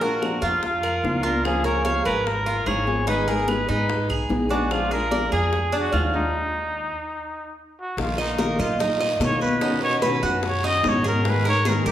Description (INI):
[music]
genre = latin, Cuban son and guajira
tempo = 147 BPM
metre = 4/4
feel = straight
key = unclear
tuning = A4 = 438 Hz
[part]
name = breathy trumpet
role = melody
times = 0.0-11.9 s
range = Eb4 to D#5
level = -26 LUFS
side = equal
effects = none
[part]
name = nylon-string guitar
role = accompaniment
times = 0.0-11.9 s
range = B2 to Bb4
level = -28 LUFS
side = left 2 dB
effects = none
[part]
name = Cuban tres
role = arpeggios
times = 0.0-11.9 s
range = D4 to F5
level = -26 LUFS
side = right 2 dB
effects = none
[part]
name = upright bass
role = bass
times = 0.0-11.9 s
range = Ab1 to Cb3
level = -27 LUFS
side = equal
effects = none
[part]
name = congas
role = percussion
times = 0.0-11.9 s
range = none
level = -31 LUFS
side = left 1 dB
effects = none
[part]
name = bongos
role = percussion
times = 0.2-11.9 s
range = none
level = -33 LUFS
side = left 3 dB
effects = none
[part]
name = claves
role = percussion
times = 0.2-6.1 s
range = none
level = -36 LUFS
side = right 4 dB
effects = none
[part]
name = guiro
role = percussion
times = 8.0-11.9 s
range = none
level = -36 LUFS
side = right 3 dB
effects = none
[sound]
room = wet recital hall reverb, RT60 1.4 s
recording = recorded in a church or concert hall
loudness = -20 LUFS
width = side -11 dB against mid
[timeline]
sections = 0.0-8.0 A section; 8.0-11.9 B section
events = stop 6.3-8.0; trumpet solo 8.0-11.9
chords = 0.0 Bb; 1.4 Db6; 3.1 Abm; 4.7 Bb7; 6.3 N.C.; 8.0 Bbsus4; 9.6 Badd9; 11.2 Abmadd9